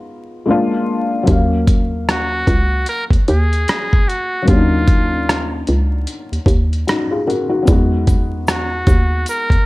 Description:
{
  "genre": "lo-fi hip hop",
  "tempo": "75 BPM",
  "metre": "4/4",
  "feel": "swing 60% on 16ths",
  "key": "Eb minor",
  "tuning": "A4 = 439 Hz",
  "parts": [
    { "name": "felt-muted upright piano", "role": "accompaniment", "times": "0.0-9.7 s", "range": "Gb3 to F5", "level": "-19 LUFS", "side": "left 2 dB", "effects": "cassette tape, low-pass filter" },
    { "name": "hollow knocking FM bass", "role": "bass", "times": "1.3-9.6 s", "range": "Db2 to E2", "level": "-18 LUFS", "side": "equal", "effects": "none" },
    { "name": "dusty soul sampler-style drum kit", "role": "drums", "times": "1.3-9.7 s", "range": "hi-hat, kick drum, rim click", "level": "-15 LUFS", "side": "equal", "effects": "none" },
    { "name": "trumpet with metal mute", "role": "melody", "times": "2.1-9.7 s", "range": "F4 to Bb4", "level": "-21 LUFS", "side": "equal", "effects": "low-pass filter" },
    { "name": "tube shaker", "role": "percussion", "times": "7.7-9.5 s", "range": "none", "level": "-37 LUFS", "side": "right 1 dB", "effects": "none" }
  ],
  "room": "small room ambience",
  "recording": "vinyl crackle",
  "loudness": "-14 LUFS",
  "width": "side -20 dB against mid",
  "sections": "0.0-1.3 A section; 1.3-9.7 B section",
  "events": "break 0.0-1.3",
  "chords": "0.5 Bb7; 1.3 Ebm9; 7.7 Emaj9"
}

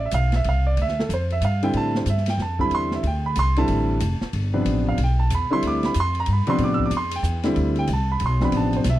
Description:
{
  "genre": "modal jazz",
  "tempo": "186 BPM",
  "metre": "3/4",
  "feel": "swing 63% on 8ths",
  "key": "unclear",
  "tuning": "A4 = 443 Hz",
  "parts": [
    { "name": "warm grand piano", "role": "accompaniment", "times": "0.0-9.0 s", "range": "C3 to E6", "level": "-23 LUFS", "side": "right 1 dB", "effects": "none" },
    { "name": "upright bass", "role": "bass", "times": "0.0-9.0 s", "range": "F1 to A2", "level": "-22 LUFS", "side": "equal", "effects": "none" },
    { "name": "open jazz drum kit", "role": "drums", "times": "0.1-8.9 s", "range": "hi-hat, kick drum, ride cymbal, snare drum", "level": "-32 LUFS", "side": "left 1 dB", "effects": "none" }
  ],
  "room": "studio ambience",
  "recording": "dry, close 1970s-style studio recording",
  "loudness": "-19 LUFS",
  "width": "side -14 dB against mid",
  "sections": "0.0-9.0 A section",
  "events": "none",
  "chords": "0.0 Dm9; 1.7 Am9; 5.6 Dm9"
}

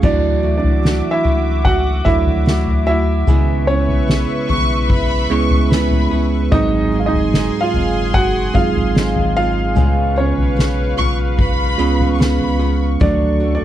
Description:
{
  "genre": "pop ballad",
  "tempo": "74 BPM",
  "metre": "4/4",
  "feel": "straight",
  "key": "unclear",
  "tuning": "A4 = 442 Hz",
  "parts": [
    { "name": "warm concert grand piano", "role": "melody", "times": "0.0-13.6 s", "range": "C#4 to F#5", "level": "-20 LUFS", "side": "right 2 dB", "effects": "slapback echo" },
    { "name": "bell-like tine electric piano", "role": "accompaniment", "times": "0.0-13.6 s", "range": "G#2 to A4", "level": "-20 LUFS", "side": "right 6 dB", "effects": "phaser" },
    { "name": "lush unison pad", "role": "sustained chords", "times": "0.0-13.6 s", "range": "F#3 to D6", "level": "-25 LUFS", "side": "left 2 dB", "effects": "chorus" },
    { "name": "nylon-string guitar", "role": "arpeggios", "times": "0.0-13.6 s", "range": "C#3 to G#4", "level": "-27 LUFS", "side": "left 7 dB", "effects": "none" },
    { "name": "warm sub bass", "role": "bass", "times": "0.0-13.6 s", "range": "F#1 to D2", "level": "-19 LUFS", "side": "equal", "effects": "none" },
    { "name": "soft-mallet drum kit", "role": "drums", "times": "0.0-13.2 s", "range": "crash cymbal, kick drum, snare drum, toms", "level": "-19 LUFS", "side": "left 1 dB", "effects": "none" },
    { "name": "warm studio violin section", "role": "second line", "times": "4.5-12.8 s", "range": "B5 to C#6", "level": "-23 LUFS", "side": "left 1 dB", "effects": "none" }
  ],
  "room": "little or no reverb",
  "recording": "dry, close 1970s-style studio recording",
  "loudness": "-13 LUFS",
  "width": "side -12 dB against mid",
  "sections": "0.0-13.6 A section",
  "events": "none",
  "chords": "0.0 Dadd9; 3.3 C#m7; 6.5 G#7; 9.8 C#7; 13.0 Dmaj7"
}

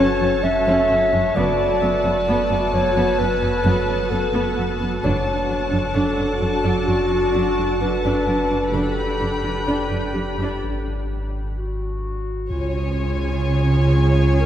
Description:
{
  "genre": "cinematic, suspense film score",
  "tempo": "65 BPM",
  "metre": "4/4",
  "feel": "straight",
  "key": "unclear",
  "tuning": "A4 = 435 Hz",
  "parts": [
    { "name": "warm chamber violin section", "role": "melody", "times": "0.0-14.5 s", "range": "G#5 to B5", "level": "-29 LUFS", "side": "left 3 dB", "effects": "none" },
    { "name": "dark clarinet", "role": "second line", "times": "0.0-14.5 s", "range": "E#4 to E5", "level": "-23 LUFS", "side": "equal", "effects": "none" },
    { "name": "dark chamber viola section", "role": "accompaniment", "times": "0.0-14.5 s", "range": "B3 to G4", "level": "-24 LUFS", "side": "right 1 dB", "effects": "none" },
    { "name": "soft additive organ-like pad", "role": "sustained chords", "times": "0.0-14.5 s", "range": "D4 to G#5", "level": "-29 LUFS", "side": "left 1 dB", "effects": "ensemble chorus, built-in reverb" },
    { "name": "dark chamber cello section", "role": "bass", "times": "0.0-14.5 s", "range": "F#2 to C#3", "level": "-24 LUFS", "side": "right 2 dB", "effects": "none" },
    { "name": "punchy sub bass", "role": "drone", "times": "0.0-14.5 s", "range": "F#1 to C#2", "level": "-28 LUFS", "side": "equal", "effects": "none" },
    { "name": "Celtic harp", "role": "texture", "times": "0.0-14.5 s", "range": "A#4 to F#5", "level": "-33 LUFS", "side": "left 2 dB", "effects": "none" },
    { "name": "dark chamber double bass section", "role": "bass", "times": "1.4-14.5 s", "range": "F#1 to C#2", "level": "-27 LUFS", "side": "right 2 dB", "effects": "none" },
    { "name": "warm studio violin section", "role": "second line", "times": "12.5-14.5 s", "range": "C#5", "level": "-29 LUFS", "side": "left 1 dB", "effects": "none" }
  ],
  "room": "wet cathedral reverb, RT60 4.4 s",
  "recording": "none",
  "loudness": "-18 LUFS",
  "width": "side -10 dB against mid",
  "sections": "0.0-12.5 A section; 12.5-14.5 B section",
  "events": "break 10.6-12.5",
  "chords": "0.0 F#m; 1.4 Bm7/F#; 5.0 D/F#; 8.7 Gadd9/F#; 10.6 N.C.; 12.5 C#"
}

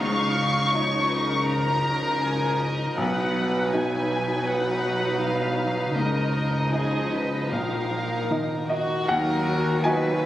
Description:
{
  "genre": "cinematic, emotional film score for orchestra",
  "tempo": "80 BPM",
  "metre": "4/4",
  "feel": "rubato",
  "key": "unclear",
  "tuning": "A4 = 441 Hz",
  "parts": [
    { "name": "dark symphonic violin section", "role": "melody", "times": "0.0-10.3 s", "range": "Eb4 to Db6", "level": "-29 LUFS", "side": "left 1 dB", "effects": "none" },
    { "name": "warm symphonic violin section", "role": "second line", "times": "0.0-10.3 s", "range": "Gb4 to F5", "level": "-28 LUFS", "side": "equal", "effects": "none" },
    { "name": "clear grand piano", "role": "accompaniment", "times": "0.0-10.3 s", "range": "Bb1 to Ab5", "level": "-29 LUFS", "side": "left 1 dB", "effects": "none" },
    { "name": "dark chamber viola section", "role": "accompaniment", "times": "0.0-10.3 s", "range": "F3 to Gb4", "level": "-30 LUFS", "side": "equal", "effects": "none" },
    { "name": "warm studio double bass section", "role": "bass", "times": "0.0-10.3 s", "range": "Bb1 to Eb2", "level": "-31 LUFS", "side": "right 1 dB", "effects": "none" },
    { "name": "warm symphonic cello section", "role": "bass", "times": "0.0-10.3 s", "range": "Eb2 to Db3", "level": "-32 LUFS", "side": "right 1 dB", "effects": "none" }
  ],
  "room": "moderate scoring stage reverb, RT60 2.2 s",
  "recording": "recorded on a phone in the room, studio ambience, compression",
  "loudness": "-22 LUFS",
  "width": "side -13 dB against mid",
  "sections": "0.0-9.1 A section; 9.1-10.3 A section",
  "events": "none",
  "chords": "0.0 Dbadd9; 3.0 B; 6.0 Dbadd9; 7.5 Bbsus4; 9.1 Ebm"
}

